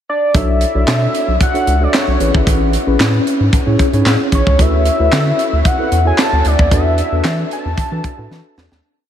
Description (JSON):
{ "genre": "early-eighties boogie funk", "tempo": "113 BPM", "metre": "4/4", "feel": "straight", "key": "unclear", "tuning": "A4 = 440 Hz", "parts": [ { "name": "fat analog lead", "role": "melody", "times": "0.1-8.5 s", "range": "C#5 to A5", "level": "-18 LUFS", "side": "equal", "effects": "chorus, diffuse ambient delay" }, { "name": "mellow tine electric piano", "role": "accompaniment", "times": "0.3-8.7 s", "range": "C#4 to C#5", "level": "-19 LUFS", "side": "left 1 dB", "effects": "medium stereo tremolo" }, { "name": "rubbery square bass", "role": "bass", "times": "0.3-8.8 s", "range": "G#1 to E3", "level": "-16 LUFS", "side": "equal", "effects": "none" }, { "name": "tight funk drum kit", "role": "drums", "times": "0.3-8.8 s", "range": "handclaps, hi-hat, kick drum, snare drum", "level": "-17 LUFS", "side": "equal", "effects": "none" } ], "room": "moderate huge ambient reverb, RT60 8.4 s", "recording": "dreamy mix soaked in reverb", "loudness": "-12 LUFS", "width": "side -10 dB against mid", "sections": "0.0-0.3 pickup bar; 0.3-8.8 verse", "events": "fade-out 6.7-8.8; drum fill 8.3-8.8", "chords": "0.3 Bm7; 2.2 Amaj7; 4.6 D69; 6.7 E7sus4", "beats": "| 0.34 0.88 1.41 1.94 | 2.47 3.00 3.53 4.06 | 4.59 5.12 5.66 6.19 | 6.72 7.25 7.78 8.31" }